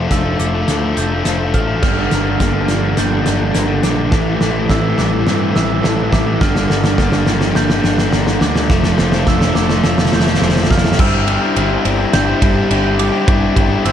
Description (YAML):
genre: post-rock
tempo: 105 BPM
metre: 4/4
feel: straight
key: G dorian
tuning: A4 = 440 Hz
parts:
  - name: mellow electric guitar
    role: arpeggios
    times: 0.0-13.9 s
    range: G2 to C5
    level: -22 LUFS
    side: equal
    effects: analog delay
  - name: raw garage guitar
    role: riff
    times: 0.0-13.9 s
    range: G2 to G4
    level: -18 LUFS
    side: left 5 dB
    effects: overdrive
  - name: fuzz picked electric bass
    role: bass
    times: 0.0-13.9 s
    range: F1 to G2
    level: -20 LUFS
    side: equal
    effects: overdrive
  - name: glockenspiel with rubber mallets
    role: arpeggios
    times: 0.1-13.9 s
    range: D6 to G6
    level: -26 LUFS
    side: right 9 dB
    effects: analog delay
  - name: loose indie drum kit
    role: drums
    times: 0.1-13.9 s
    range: crash cymbal, hi-hat, kick drum, ride cymbal, snare drum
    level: -17 LUFS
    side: equal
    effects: none
  - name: overdriven semi-hollow guitar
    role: riff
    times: 1.8-11.0 s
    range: G2 to A3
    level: -22 LUFS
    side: right 14 dB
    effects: none
room: studio reverb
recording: dark, warm production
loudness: -12 LUFS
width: side -9 dB against mid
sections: 0.0-11.0 A section; 11.0-13.9 B section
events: build-up 0.0-11.0; drum fill 0.0-11.0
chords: 0.0 Dm7/F; 1.8 Gm7; 4.1 Am7; 6.4 Gm7; 8.7 Dm7/F; 9.8 Fmaj7; 11.0 Cadd9/G